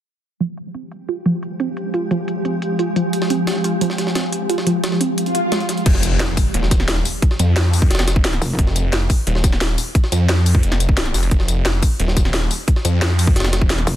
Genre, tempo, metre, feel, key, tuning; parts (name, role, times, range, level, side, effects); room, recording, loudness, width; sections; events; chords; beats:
dark technical drum and bass; 176 BPM; 4/4; straight; F minor; A4 = 440 Hz
swarming drone; sustained chords; 1.4-5.8 s; F3 to G4; -23 LUFS; equal; built-in reverb, sidechain pumping
warbly dusty pluck; arpeggios; 0.4-5.6 s; F3 to F4; -22 LUFS; right 2 dB; chorus, sidechain pumping, dub echo
drum and bass drum kit; drums; 0.4-13.9 s; crash cymbal, hi-hat, snare drum, tambourine; -24 LUFS; left 1 dB; low-pass filter on hats, low-pass filter on cymbals, low-pass filter on perc, low-pass filter on snare
jungle sampler-style drum kit; drums; 3.1-14.0 s; hi-hat, snare drum; -27 LUFS; equal; high-pass filter on hats, high-pass filter on snare
swell and impact; sound effects; 5.2-7.2 s; -24 LUFS; equal
snarling distorted saw bass; bass; 5.9-13.9 s; Eb1 to F2; -18 LUFS; equal; distortion, sidechain pumping
electronic kick drum; drums; 5.9-13.7 s; -16 LUFS; equal
metallic wobble bass; bass; 8.4-8.6, 13.9-14.0 s; F1; -20 LUFS; equal; chorus
light reverb; dense, heavily limited modern master; -16 LUFS; side -11 dB against mid
0.4-5.9 A section; 5.9-14.0 B section
filter sweep on drum 0.4-5.9; filter sweep on synth arpeggio sound 0.4-5.9; swell 5.2-5.9; drop 5.9-14.0; impact 5.9-7.2
0.4 Fmadd9; 5.9 N.C.
| 0.41 0.75 1.09 1.43 | 1.77 2.11 2.45 2.79 | 3.13 3.47 3.81 4.16 | 4.50 4.84 5.18 5.52 | 5.86 6.20 6.54 6.88 | 7.22 7.56 7.91 8.25 | 8.59 8.93 9.27 9.61 | 9.95 10.29 10.63 10.97 | 11.31 11.65 12.00 12.34 | 12.68 13.02 13.36 13.70